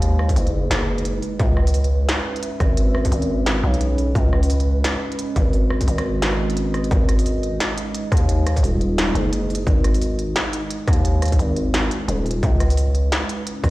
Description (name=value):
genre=half-time drum and bass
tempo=174 BPM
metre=4/4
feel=swing 59% on 16ths, half-time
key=G# minor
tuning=A4 = 440 Hz
part: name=dark analog pad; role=sustained chords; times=0.0-13.7 s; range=G#3 to E5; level=-27 LUFS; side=right 1 dB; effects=chorus, phaser, sidechain pumping
part: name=growling 808-style bass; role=bass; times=0.0-13.7 s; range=D#1 to D#2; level=-20 LUFS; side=equal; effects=none
part: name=industrial drum kit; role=drums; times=0.0-13.7 s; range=hi-hat, rim click, snare drum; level=-26 LUFS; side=equal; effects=none
part: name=electronic kick drum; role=drums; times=0.3-13.7 s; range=none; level=-19 LUFS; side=equal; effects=distortion
room=little or no reverb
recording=played on a big sound system in a bare room, large studio reverb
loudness=-17 LUFS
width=side -18 dB against mid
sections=0.0-6.9 A section; 6.9-13.7 A section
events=drop 0.0-6.9, 6.9-13.7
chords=0.0 G#m; 1.4 C#m7; 6.9 G#m; 12.4 C#m7